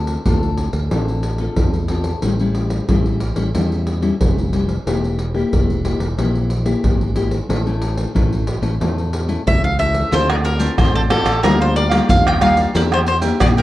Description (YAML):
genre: samba and choro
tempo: 91 BPM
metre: 4/4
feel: straight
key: D minor from 10.1 s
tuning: A4 = 444 Hz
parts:
  - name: nylon-string guitar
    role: accompaniment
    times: 0.0-13.6 s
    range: A2 to A4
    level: -22 LUFS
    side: left 3 dB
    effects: none
  - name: fingered electric bass with an envelope filter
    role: bass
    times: 0.0-13.6 s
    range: E1 to Bb2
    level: -20 LUFS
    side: equal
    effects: none
  - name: pandeiro, surdo, maracas and tamborim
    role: percussion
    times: 0.1-13.6 s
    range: none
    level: -19 LUFS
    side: equal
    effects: none
  - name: mandolin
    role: melody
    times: 9.5-13.6 s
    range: A4 to G5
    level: -19 LUFS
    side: equal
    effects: none
  - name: cavaquinho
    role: accompaniment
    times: 10.1-13.6 s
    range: D4 to G5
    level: -24 LUFS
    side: right 4 dB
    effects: none
room: light reverb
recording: worn, warbling old tape, cassette tape, warbly pitch drift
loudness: -15 LUFS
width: side -15 dB against mid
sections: 0.0-10.1 A section; 10.1-13.6 B section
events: none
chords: 0.0 Dm7; 2.2 A7; 4.9 Edim; 7.5 A; 10.1 Dm7; 11.4 Gm7/D; 12.8 Em7b5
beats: 0.26 0.91 1.57 | 2.23 2.89 3.55 4.20 | 4.86 5.52 6.18 6.83 | 7.49 8.15 8.81 9.46 | 10.12 10.78 11.44 12.09 | 12.75 13.41